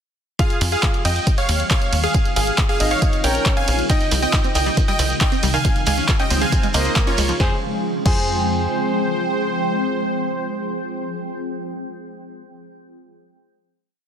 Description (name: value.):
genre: uplifting trance.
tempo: 137 BPM.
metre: 4/4.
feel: straight.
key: F minor.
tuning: A4 = 440 Hz.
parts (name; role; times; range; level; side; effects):
supersaw stab; melody; 0.4-11.4 s; F4 to Ab5; -24 LUFS; right 1 dB; cassette tape, sidechain pumping, dub echo.
bright concert grand piano; second line; 0.4-11.4 s; Bb3 to F5; -27 LUFS; equal; dub echo.
shimmering ambient pad; sustained chords; 1.0-10.7 s; F3 to G5; -25 LUFS; equal; chorus, built-in reverb, phaser, sidechain pumping.
electronic kick drum; drums; 0.4-8.2 s; none; -19 LUFS; equal; none.
punchy analog drum machine; drums; 0.4-8.2 s; crash cymbal, handclaps, hi-hat, ride cymbal, snare drum; -24 LUFS; right 1 dB; none.
tight sequencer bass; bass; 0.6-8.7 s; Ab1 to F2; -22 LUFS; equal; sidechain pumping.
tight sequenced synth; arpeggios; 3.9-8.2 s; Eb3 to F4; -28 LUFS; right 2 dB; chorus, sidechain pumping, dub echo.
shekere; percussion; 3.9-7.4 s; none; -29 LUFS; right 5 dB; none.
room: light reverb, digital ambience.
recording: dense, heavily limited modern master.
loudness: -17 LUFS.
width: side -8 dB against mid.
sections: 0.4-7.4 drop; 7.4-10.9 final chord.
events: drop 0.4-7.4.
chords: 0.4 Fmadd9; 1.3 Ebadd9; 2.1 Ab6; 3.0 Bbm; 3.9 Cm; 5.6 Db; 7.4 Fmadd9.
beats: | 0.39 0.83 1.27 1.71 | 2.14 2.58 3.02 3.46 | 3.90 4.33 4.77 5.21 | 5.65 6.09 6.52 6.96 | 7.40 7.84 8.28 8.71 | 9.15 9.59 10.03 10.46.